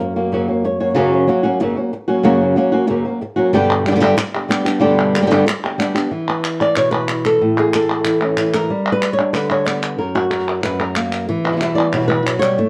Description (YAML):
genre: flamenco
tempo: 186 BPM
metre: 4/4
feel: straight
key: F# phrygian dominant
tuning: A4 = 440 Hz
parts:
  - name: flamenco guitar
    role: melody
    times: 0.0-12.7 s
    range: F#2 to D5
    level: -18 LUFS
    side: equal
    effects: slapback echo
  - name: flamenco guitar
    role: stabs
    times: 0.0-6.1, 11.3-12.6 s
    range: E2 to G4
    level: -25 LUFS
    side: equal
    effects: none
  - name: palmas hand claps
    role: percussion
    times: 3.7-12.6 s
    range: none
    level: -25 LUFS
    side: equal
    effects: none
room: moderate studio reverb, RT60 0.8 s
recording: worn, warbling old tape, cassette tape, warbly pitch drift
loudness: -17 LUFS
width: mono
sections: 1.0-6.1 A section; 6.1-12.7 B section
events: none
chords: 0.0 F#; 3.5 G; 6.1 E5; 7.4 A; 8.7 G; 10.0 F#; 11.3 Em